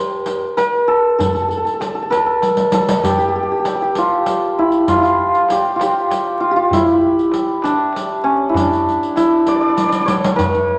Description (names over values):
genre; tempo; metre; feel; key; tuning
Persian modal ensemble; 65 BPM (dotted quarters); 6/8; straight; unclear; A4 = 440 Hz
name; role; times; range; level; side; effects
santur; melody; 0.0-10.8 s; C#4 to D5; -17 LUFS; equal; none
riq; percussion; 0.3-10.6 s; none; -27 LUFS; equal; none
tombak; percussion; 0.3-10.8 s; none; -30 LUFS; equal; none
room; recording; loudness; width
wet large studio reverb, RT60 1.4 s; vinyl crackle; -16 LUFS; mono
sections
0.0-3.0 A section; 3.0-10.8 B section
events
drum fill 2.4-3.0, 9.8-10.4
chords
none